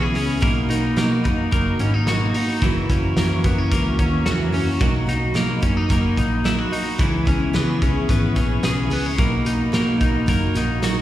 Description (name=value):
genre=jangly indie pop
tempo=110 BPM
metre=4/4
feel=straight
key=B major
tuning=A4 = 440 Hz
part: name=picked steel-string acoustic guitar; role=accompaniment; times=0.0-11.0 s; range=F#2 to G#4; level=-24 LUFS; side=right 4 dB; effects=none
part: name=hollow soft pad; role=sustained chords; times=0.0-11.0 s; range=F#4 to C#6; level=-32 LUFS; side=right 2 dB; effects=ensemble chorus
part: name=twelve-string electric guitar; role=arpeggios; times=0.0-11.0 s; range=E3 to G#4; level=-23 LUFS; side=left 3 dB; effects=ping-pong delay, slapback echo
part: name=vintage muted picked electric bass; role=bass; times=0.0-11.0 s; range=F#1 to C#3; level=-23 LUFS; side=equal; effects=none
part: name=loose indie drum kit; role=drums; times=0.1-11.0 s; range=hi-hat, kick drum, snare drum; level=-23 LUFS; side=equal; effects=none
room=little or no reverb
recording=live gig heard through the venue's PA, recital hall reverb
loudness=-17 LUFS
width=side -13 dB against mid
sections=0.0-11.0 A section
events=none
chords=0.4 Bmaj7; 2.6 F#7; 7.0 C#m7; 9.2 Bmaj7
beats=| 0.43 0.97 1.52 2.07 | 2.62 3.17 3.71 4.26 | 4.81 5.36 5.90 6.45 | 7.00 7.55 8.09 8.64 | 9.19 9.74 10.29 10.83